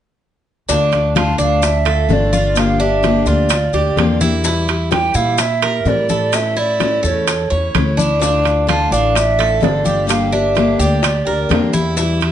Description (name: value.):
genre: latin, Cuban son and guajira.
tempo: 128 BPM.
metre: 4/4.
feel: straight.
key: D harmonic minor.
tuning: A4 = 440 Hz.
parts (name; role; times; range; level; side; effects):
picked steel-string acoustic guitar; accompaniment; 0.7-12.3 s; D3 to G4; -21 LUFS; left 5 dB; none.
Cuban tres; arpeggios; 0.7-12.3 s; D4 to C#5; -20 LUFS; right 1 dB; none.
upright bass; bass; 0.7-12.3 s; G1 to Bb2; -19 LUFS; equal; none.
bongos; percussion; 0.7-12.3 s; none; -26 LUFS; left 8 dB; none.
congas; percussion; 0.7-12.3 s; none; -23 LUFS; left 4 dB; none.
maracas; percussion; 0.7-12.3 s; none; -28 LUFS; left 8 dB; none.
timbales; percussion; 0.9-12.3 s; none; -22 LUFS; right 9 dB; none.
breathy mellow silver concert flute; melody; 1.2-11.7 s; C#5 to A5; -19 LUFS; right 4 dB; none.
room: light reverb.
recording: nothing above 10.6 kHz.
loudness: -13 LUFS.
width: side -10 dB against mid.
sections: 0.7-12.3 A section.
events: none.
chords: 0.7 Dm; 2.6 Gm7; 4.5 Edim; 6.3 A; 8.2 Dm; 10.1 Gm.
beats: | 0.69 1.16 1.63 2.10 | 2.57 3.04 3.51 3.98 | 4.45 4.92 5.39 5.86 | 6.33 6.80 7.27 7.74 | 8.21 8.68 9.15 9.62 | 10.10 10.56 11.04 11.51 | 11.98.